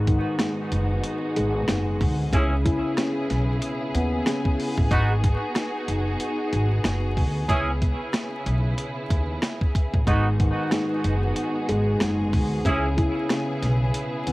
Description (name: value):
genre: hip hop, boom-bap hip-hop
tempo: 93 BPM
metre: 4/4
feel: swing 60% on 16ths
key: G# minor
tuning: A4 = 440 Hz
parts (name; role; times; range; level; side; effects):
- dark upright piano; accompaniment; 0.0-4.9, 10.1-14.3 s; G#2 to E4; -26 LUFS; left 1 dB; cassette tape, high-pass filter, low-pass filter
- warm studio string section; sustained chords; 0.0-14.3 s; C#3 to G#4; -30 LUFS; equal; high-pass filter, low-pass filter
- upright bass; bass; 0.0-14.3 s; F#1 to D#2; -25 LUFS; equal; transformer saturation
- boom bap sampler-style drum kit; drums; 0.1-14.3 s; hi-hat, kick drum, rim click, snare drum; -24 LUFS; equal; cassette tape
- mellow horn section; stabs; 2.3-12.9 s; B3 to G#4; -30 LUFS; right 1 dB; high-pass filter, low-pass filter, tape echo
room: small room reverb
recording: home recording on cassette, vinyl crackle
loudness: -21 LUFS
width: side -20 dB against mid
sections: 0.0-14.3 A section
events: none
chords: 0.0 G#m7; 2.3 C#m7; 4.9 G#m7; 7.5 C#m7; 10.1 G#m7; 12.7 C#m7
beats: 0.39 1.04 1.68 | 2.33 2.97 3.62 4.26 | 4.91 5.55 6.20 6.84 | 7.49 8.13 8.78 9.42 | 10.07 10.71 11.36 12.01 | 12.65 13.29 13.94